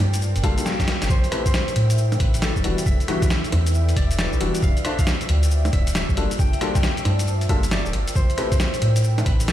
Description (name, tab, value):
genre	UK garage, two-step garage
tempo	136 BPM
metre	4/4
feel	swing 64% on 16ths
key	A minor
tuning	A4 = 441 Hz
part	concert harp	melody	0.0-9.5 s	A4 to G5	-32 LUFS	left 3 dB	ping-pong delay
part	airy breathy pad	sustained chords	0.0-9.5 s	E5 to G5	-36 LUFS	equal	chorus, sidechain pumping
part	soft dub sub bass	bass	0.0-9.5 s	D1 to A2	-21 LUFS	equal	none
part	ethereal airy pad	texture	0.0-9.5 s	E4 to A5	-32 LUFS	equal	ensemble chorus, built-in reverb, sidechain pumping
part	boom bap sampler-style drum kit	drums	0.1-9.5 s	bongos, hi-hat, rim click, shaker, snare drum	-26 LUFS	equal	none
part	warm baby grand piano	stabs	0.4-8.5 s	E3 to E5	-28 LUFS	left 2 dB	ping-pong delay
part	electronic kick drum	drums	0.4-9.4 s	none	-21 LUFS	equal	none
room	little or no reverb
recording	played on a big sound system in a bare room, large studio reverb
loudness	-18 LUFS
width	side -12 dB against mid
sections	0.0-9.5 A section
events	drum fill 0.7-1.1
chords	0.0 Gm7; 1.1 Am7; 2.6 Em7; 4.6 Dm7; 6.2 Gm7; 8.2 Am7